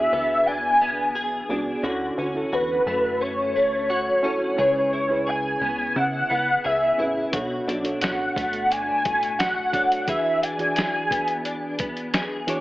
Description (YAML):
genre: indie pop, bedroom pop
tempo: 87 BPM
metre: 4/4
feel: straight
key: unclear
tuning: A4 = 438 Hz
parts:
  - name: warm velvety synth lead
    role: melody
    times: 0.0-11.8 s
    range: B4 to G#5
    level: -22 LUFS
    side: equal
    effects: ensemble chorus, tape echo
  - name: direct-recorded clean electric guitar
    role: accompaniment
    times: 0.0-12.6 s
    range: B2 to G#4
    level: -29 LUFS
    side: left 1 dB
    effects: ensemble chorus, vibrato effect
  - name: reed electric piano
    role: accompaniment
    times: 0.0-12.6 s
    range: E3 to D5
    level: -30 LUFS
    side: right 1 dB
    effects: overdrive
  - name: plucky analog bass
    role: bass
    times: 0.0-9.6 s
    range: A1 to C#3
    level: -34 LUFS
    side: equal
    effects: none
  - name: lo-fi sampler-style drum kit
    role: drums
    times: 7.3-12.6 s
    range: hi-hat, kick drum, snare drum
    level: -28 LUFS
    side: equal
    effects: none
room: light reverb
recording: AM radio sound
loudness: -21 LUFS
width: side -17 dB against mid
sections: 0.0-12.6 A section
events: none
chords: 0.0 E7; 1.8 Dmaj7; 4.6 C#m7; 7.3 Bm7; 10.1 E7